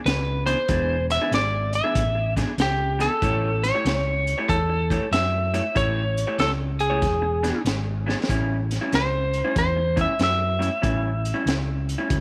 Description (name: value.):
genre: electric blues shuffle.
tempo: 94 BPM.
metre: 4/4.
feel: swing 65% on 8ths.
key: A mixolydian.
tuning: A4 = 440 Hz.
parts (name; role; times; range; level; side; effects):
lightly driven lead guitar; melody; 0.1-12.1 s; G4 to E5; -27 LUFS; equal; none.
fingered electric bass; bass; 0.1-12.2 s; E1 to F#2; -28 LUFS; equal; none.
crunchy breakbeat drum kit; drums; 0.1-12.2 s; hi-hat, kick drum, snare drum; -30 LUFS; equal; none.
electric guitar through a small old amp; riff; 0.5-12.2 s; A2 to C#5; -31 LUFS; equal; spring reverb.
room: small room ambience.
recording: none.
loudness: -23 LUFS.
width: mono.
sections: 0.0-8.3 A section; 8.3-12.2 B section.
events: drum fill 8.0-8.3; lead electric guitar solo 8.3-12.2.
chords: 0.0 E7; 3.2 A7; 7.0 E7; 8.3 A7.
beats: 0.05 | 0.68 1.31 1.95 2.58 | 3.21 3.85 4.48 5.11 | 5.75 6.38 7.02 7.65 | 8.29 8.92 9.56 10.20 | 10.83 11.47 12.10.